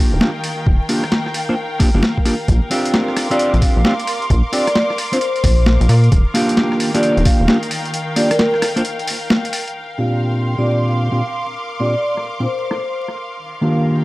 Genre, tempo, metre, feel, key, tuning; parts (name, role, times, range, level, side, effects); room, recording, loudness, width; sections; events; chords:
UK garage, two-step garage; 132 BPM; 4/4; swing 64% on 16ths; Bb major; A4 = 440 Hz
mellow electric guitar; stabs; 0.0-14.0 s; Bb2 to C5; -19 LUFS; equal; low-pass filter
clear symphonic string section; texture; 0.0-14.0 s; Eb3 to D6; -25 LUFS; equal; sidechain pumping
rubbery square bass; bass; 0.1-7.5 s; Eb1 to Bb2; -14 LUFS; equal
boom bap sampler-style drum kit; drums; 0.2-14.0 s; cabasa, hi-hat, rim click, snare drum; -20 LUFS; equal; overdrive, low-pass filter on hats, low-pass filter on snare, low-pass filter on perc
electronic kick drum; drums; 0.7-7.4 s; -14 LUFS; equal; overdrive
vibraphone with medium mallets; melody; 2.7-13.8 s; Bb4 to F5; -22 LUFS; equal; tape echo
light reverb, digital ambience; dry, gritty hardware recording, vinyl crackle; -14 LUFS; side -19 dB against mid
0.0-9.8 A section; 9.8-14.0 B section
break 7.9-9.8
0.0 Ebmaj7; 2.5 Bb69; 6.1 Ebmaj7; 9.8 Bb69; 13.4 Ebmaj7